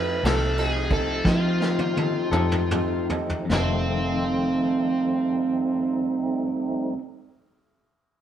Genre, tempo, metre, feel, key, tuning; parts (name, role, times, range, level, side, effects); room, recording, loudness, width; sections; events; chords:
slow blues; 48-62 BPM (dotted quarters); 12/8; straight; F mixolydian; A4 = 438 Hz
overdriven electric guitar; melody; 0.0-7.0 s; C4 to B4; -25 LUFS; right 1 dB
clear upright piano; accompaniment; 0.0-7.0 s; C4 to C5; -33 LUFS; right 3 dB
mellow horn section; sustained chords; 0.0-7.0 s; A3 to G5; -38 LUFS; left 1 dB
tonewheel organ; sustained chords; 0.0-7.0 s; F3 to Eb4; -33 LUFS; equal; slow rotary speaker
vintage muted fingered electric bass; bass; 0.0-6.9 s; F1 to F3; -26 LUFS; equal
clean electric guitar; accompaniment; 0.2-7.1 s; F2 to A4; -30 LUFS; left 3 dB; tremolo
vintage brush drum kit; drums; 0.2-3.7 s; kick drum, ride cymbal, snare drum, toms; -27 LUFS; equal
moderate stone room reverb, RT60 1.1 s; band playing live in one room; -21 LUFS; side -10 dB against mid
0.0-3.5 A section; 3.5-8.2 B section
slowing down 0.0-3.5; drum fill 1.2-3.5
0.0 F7